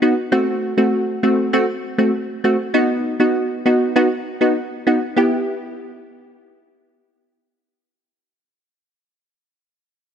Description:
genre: dancehall.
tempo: 99 BPM.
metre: 4/4.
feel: straight.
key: E harmonic minor.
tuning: A4 = 439 Hz.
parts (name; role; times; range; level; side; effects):
wavetable chord stab; solo; 0.0-8.3 s; A3 to G4; -16 LUFS; equal; none.
room: moderate lush hall reverb, RT60 2.2 s.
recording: none.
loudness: -16 LUFS.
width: side -8 dB against mid.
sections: 0.0-5.2 A section; 5.2-7.6 B section.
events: none.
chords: 0.3 F#dim; 2.7 B; 5.2 Em.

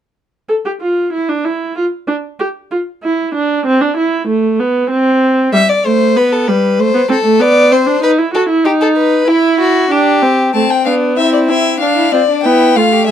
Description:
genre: classical, baroque-style fugue for string quartet.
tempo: 95 BPM.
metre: 4/4.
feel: straight.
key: A minor.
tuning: A4 = 439 Hz.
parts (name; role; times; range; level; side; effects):
warm viola; accompaniment; 0.5-13.1 s; G3 to A4; -12 LUFS; right 2 dB; none.
rich violin; second line; 5.5-13.1 s; C4 to E5; -13 LUFS; left 3 dB; none.
rich violin; melody; 10.5-13.1 s; D5 to A5; -14 LUFS; left 7 dB; none.
room: light reverb.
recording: dark, warm production.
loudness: -10 LUFS.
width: side -9 dB against mid.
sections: 0.5-10.5 A section; 10.5-13.1 B section.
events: none.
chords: 0.5 N.C.; 5.5 Em (rootless); 6.8 Am; 8.0 B/D#; 9.3 Em; 10.5 Am.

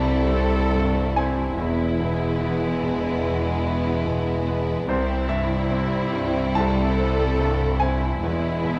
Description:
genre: cinematic, emotional film score for orchestra.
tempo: 72 BPM.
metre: 4/4.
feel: rubato.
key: C major.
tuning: A4 = 440 Hz.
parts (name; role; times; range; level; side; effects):
rich symphonic violin section; melody; 0.0-8.8 s; E4; -35 LUFS; equal; none.
rich symphonic violin section; second line; 0.0-8.8 s; G3 to C4; -32 LUFS; equal; none.
clear concert grand piano; accompaniment; 0.0-8.8 s; C2 to A5; -29 LUFS; equal; none.
rich symphonic viola section; accompaniment; 0.0-8.8 s; C4 to A4; -32 LUFS; equal; none.
mellow French horn section; sustained chords; 0.0-8.8 s; G3 to G#4; -33 LUFS; equal; none.
clear symphonic double bass section; bass; 0.0-8.8 s; E1 to C2; -29 LUFS; equal; none.
rich symphonic cello section; bass; 0.0-8.8 s; C2 to E2; -30 LUFS; equal; none.
room: moderate scoring stage reverb, RT60 1.9 s.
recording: dark, warm production.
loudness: -23 LUFS.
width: mono.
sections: 0.0-8.8 A section.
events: none.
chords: 0.0 C; 1.6 E; 4.9 C; 8.2 E.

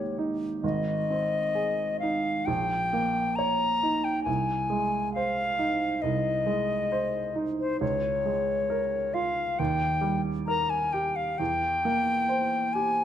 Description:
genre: classical, romantic duo for flute and grand piano.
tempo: 67 BPM.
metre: 4/4.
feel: rubato.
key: Ab major.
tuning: A4 = 440 Hz.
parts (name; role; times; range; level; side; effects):
bright silver concert flute; melody; 0.0-13.0 s; C5 to Bb5; -27 LUFS; left 3 dB; none.
clear baby grand piano; accompaniment; 0.0-13.0 s; Ab1 to Db5; -29 LUFS; right 3 dB; none.
room: moderate recital hall reverb, RT60 1.7 s.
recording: close, detailed microphones.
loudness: -25 LUFS.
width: side -10 dB against mid.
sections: 0.0-13.0 A section.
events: none.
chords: 0.0 Eb7/Ab; 0.6 Ab; 2.5 Eb7/Bb; 4.3 Ab/C; 7.8 Bbm7/Db; 9.6 Eb; 11.4 C7/E.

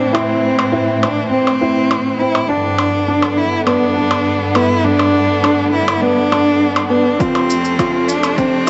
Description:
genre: piano and strings electronica.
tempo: 102 BPM.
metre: 4/4.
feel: straight.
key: unclear.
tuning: A4 = 440 Hz.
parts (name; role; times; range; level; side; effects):
warm cello; melody; 0.0-8.7 s; C4 to E4; -19 LUFS; equal; tape echo.
warm symphonic string section; sustained chords; 0.0-8.7 s; F2 to C4; -22 LUFS; equal; sidechain pumping.
riser; sound effects; 1.6-8.7 s; none; -34 LUFS; equal; none.
felt-muted upright piano; riff; 0.1-8.7 s; B3 to F4; -20 LUFS; equal; tape echo.
percussion blips and shaker; drums; 0.1-8.7 s; none; -22 LUFS; equal; none.
electronic kick drum; drums; 7.2-8.5 s; none; -24 LUFS; equal; overdrive.
room: moderate lush hall reverb, RT60 2.4 s.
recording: high-pass filter, nothing above 8.0 kHz.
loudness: -15 LUFS.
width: mono.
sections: 0.0-8.7 A section.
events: build-up 0.0-8.7.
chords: 0.0 Am; 2.5 G; 7.2 F.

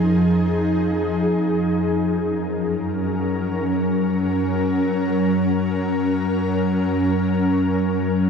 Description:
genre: hip hop.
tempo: free time.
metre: none.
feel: none.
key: unclear.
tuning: A4 = 443 Hz.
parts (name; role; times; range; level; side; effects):
ethereal airy pad; solo; 0.0-8.3 s; F2 to Bb4; -18 LUFS; equal; ensemble chorus, built-in reverb, digital delay.
room: moderate huge ambient reverb, RT60 7.0 s.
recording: none.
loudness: -18 LUFS.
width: side -6 dB against mid.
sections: 0.0-8.3 A section.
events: none.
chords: 0.0 Fm7; 1.9 Gb.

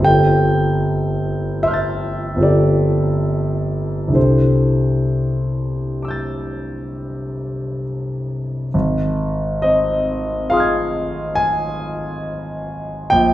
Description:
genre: classical, impressionist solo piano.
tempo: 63-77 BPM.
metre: 5/4.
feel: rubato.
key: C major, Ab major from 8.7 s.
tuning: A4 = 440 Hz.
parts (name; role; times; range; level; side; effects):
clear concert grand piano; solo; 0.0-13.3 s; G1 to A6; -16 LUFS; equal; none.
room: wet recital hall reverb, RT60 1.5 s.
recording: heard from further back in the room.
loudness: -17 LUFS.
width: side -14 dB against mid.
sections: 0.0-8.7 A section; 8.7-13.3 B section.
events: none.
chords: 0.1 G9sus4; 4.2 C69; 8.7 Ab6.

